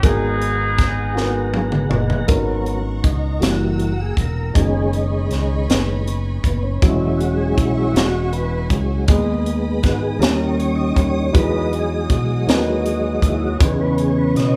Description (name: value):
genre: slow gospel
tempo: 53 BPM (dotted quarters)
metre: 6/8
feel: straight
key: G# minor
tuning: A4 = 435 Hz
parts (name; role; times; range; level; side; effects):
- clear horn section; melody; 0.0-1.5 s; B3 to G#4; -25 LUFS; equal; none
- dark baby grand piano; accompaniment; 0.0-14.6 s; G#2 to G#5; -27 LUFS; equal; none
- tonewheel organ; sustained chords; 0.0-14.6 s; C#3 to A#5; -25 LUFS; equal; fast rotary speaker, chorus vibrato
- fingered electric bass; bass; 0.0-14.6 s; E1 to B2; -24 LUFS; equal; none
- tight funk drum kit; drums; 0.0-14.5 s; hi-hat, kick drum, snare drum, toms; -20 LUFS; equal; none
- warm studio string section; sustained chords; 2.3-14.6 s; C#5 to E6; -37 LUFS; equal; none
room: moderate large studio reverb, RT60 0.8 s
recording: band playing live in one room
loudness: -19 LUFS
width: mono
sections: 0.0-2.3 A section; 2.3-14.6 B section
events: drum fill 1.2-2.3; grand piano fill 1.2-2.3; tonewheel organ solo 2.3-14.6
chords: 0.0 G#m9; 2.3 G#m11; 3.4 F#7b9; 4.6 B69/F#; 6.8 E69; 9.1 G#m/D#; 10.2 D#7b9; 11.3 Emaj9; 13.6 C#m9/E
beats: | 0.03 1.16 | 2.29 3.43 | 4.56 5.69 | 6.82 7.95 | 9.09 10.21 | 11.35 12.48 | 13.61